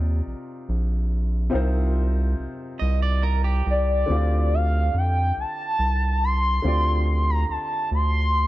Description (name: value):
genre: slow six-eight R&B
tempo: 47 BPM (dotted quarters)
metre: 6/8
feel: straight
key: D phrygian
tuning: A4 = 441 Hz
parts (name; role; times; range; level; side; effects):
- warm baby grand piano; accompaniment; 0.0-8.5 s; C3 to F5; -31 LUFS; left 2 dB; none
- round analog bass; bass; 0.0-8.5 s; Bb1 to F2; -21 LUFS; equal; none
- electric guitar at the edge of break-up; second line; 2.8-4.0 s; G4 to Eb5; -30 LUFS; right 8 dB; spring reverb, tape echo
- gliding portamento lead; melody; 3.7-8.5 s; D5 to C6; -24 LUFS; equal; chorus
room: little or no reverb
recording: dark, warm production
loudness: -20 LUFS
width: side -16 dB against mid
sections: 0.0-8.5 A section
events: none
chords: 0.0 Cm11; 4.1 Dm11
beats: 0.25 | 1.53 2.81 | 4.08 5.36 | 6.63 7.91